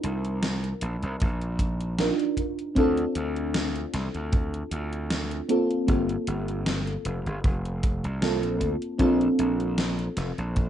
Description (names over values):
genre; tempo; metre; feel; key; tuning
vaporwave; 77 BPM; 4/4; swing 54% on 16ths; G minor; A4 = 442 Hz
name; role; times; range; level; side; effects
mellow FM electric piano; accompaniment; 0.0-10.7 s; Bb3 to Bb4; -27 LUFS; equal; phaser, lush chorus, analog delay
gritty slap bass; bass; 0.0-10.7 s; F1 to D2; -29 LUFS; equal; overdrive
gated 80s digital drum machine; drums; 0.0-10.7 s; hi-hat, snare drum; -31 LUFS; equal; gated reverb, gated reverb snare, overdrive
kick drum; drums; 1.2-10.7 s; none; -26 LUFS; equal; none
room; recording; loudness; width
moderate studio reverb, RT60 0.6 s; rough home demo mix, cassette tape, nothing above 11.0 kHz; -24 LUFS; side -10 dB against mid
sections
0.0-10.7 A section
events
none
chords
0.0 Cm11; 2.8 Dm7; 5.5 Gm11; 9.0 Bbmaj7